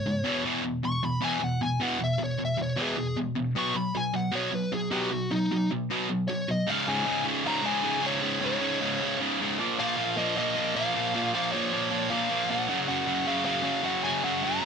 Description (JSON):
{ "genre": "punk", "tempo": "154 BPM", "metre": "4/4", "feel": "straight", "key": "Db mixolydian", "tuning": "A4 = 439 Hz", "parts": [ { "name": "smooth overdriven lead guitar", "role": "melody", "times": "0.0-14.7 s", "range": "Eb4 to Db6", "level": "-30 LUFS", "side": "left 1 dB", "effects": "none" }, { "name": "distorted electric guitar", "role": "riff", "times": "0.0-14.7 s", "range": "Db2 to Cb4", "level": "-26 LUFS", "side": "right 1 dB", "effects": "overdrive" } ], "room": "moderate studio ambience, RT60 0.4 s", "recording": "none", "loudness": "-25 LUFS", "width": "side -6 dB against mid", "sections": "0.0-6.7 A section; 6.7-14.7 B section", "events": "lead electric guitar solo 0.0-6.7", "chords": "0.3 E; 3.6 Cb5; 6.7 Db5; 9.6 Bb5; 12.7 Gb5" }